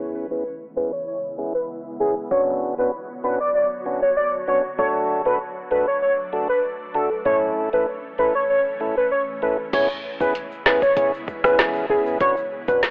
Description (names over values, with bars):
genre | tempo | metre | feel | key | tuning
dancehall | 97 BPM | 4/4 | straight | C# phrygian | A4 = 440 Hz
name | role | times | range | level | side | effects
tonewheel organ | accompaniment | 0.0-12.8 s | A3 to B4 | -28 LUFS | equal | stopped rotary speaker, low-pass filter
ethereal airy pad | sustained chords | 0.0-12.9 s | C#3 to C#5 | -38 LUFS | equal | ensemble chorus, built-in reverb, tremolo, sidechain pumping, low-pass filter
short 808-style bass | bass | 0.0-12.9 s | A1 to D2 | -36 LUFS | equal | none
warm velvety synth lead | melody | 0.3-12.8 s | G#4 to D5 | -24 LUFS | equal | chorus, low-pass filter
afro-pop drum kit | drums | 9.7-12.9 s | crash cymbal, hi-hat, kick drum, rim click, snare drum | -25 LUFS | equal | none
egg shaker | percussion | 9.7-12.9 s | none | -58 LUFS | equal | none
room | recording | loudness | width
light reverb, digital ambience | worn, warbling old tape, cassette tape, warbly pitch drift, telephone sound | -22 LUFS | mono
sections
0.0-9.7 A section; 9.7-12.9 B section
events
filter sweep 0.0-9.7; break 9.1-9.7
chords
0.0 C#m7; 2.3 Bmadd9; 4.8 D; 7.3 A; 9.7 C#m7; 12.2 Bmadd9